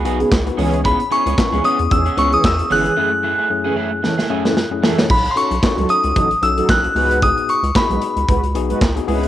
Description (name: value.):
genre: early-eighties boogie funk.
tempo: 113 BPM.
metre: 4/4.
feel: swing 56% on 16ths.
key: unclear.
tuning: A4 = 440 Hz.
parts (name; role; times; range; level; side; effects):
tine electric piano; accompaniment; 0.0-9.3 s; F#2 to B4; -24 LUFS; left 8 dB; auto-pan, cassette tape.
electric guitar at the edge of break-up; riff; 0.0-5.0 s; A3 to G#4; -25 LUFS; right 8 dB; lush chorus, cassette tape.
rubbery square bass; bass; 0.0-9.3 s; G1 to E2; -21 LUFS; equal; none.
modern studio drum kit; drums; 0.1-9.3 s; crash cymbal, handclaps, hi-hat, kick drum, snare drum; -19 LUFS; equal; none.
mellow synth brass; second line; 0.2-9.3 s; C#3 to B4; -23 LUFS; right 2 dB; chorus, cassette tape.
glassy synth bell; melody; 0.9-8.5 s; B5 to F#6; -18 LUFS; left 1 dB; chorus.
room: moderate spring reverb, RT60 2.0 s, studio reverb.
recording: home recording on cassette.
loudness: -14 LUFS.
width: side -12 dB against mid.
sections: 0.0-5.1 A section; 5.1-9.3 A section.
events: break 3.0-5.1; drum fill 4.0-5.1.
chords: 0.0 C#7sus4; 0.6 E6; 3.0 F#m9; 5.1 B9; 7.0 C#7sus4.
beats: 0.32 | 0.85 1.38 1.91 2.44 | 2.97 3.50 4.04 4.57 | 5.10 5.63 6.16 6.69 | 7.22 7.75 8.28 8.81.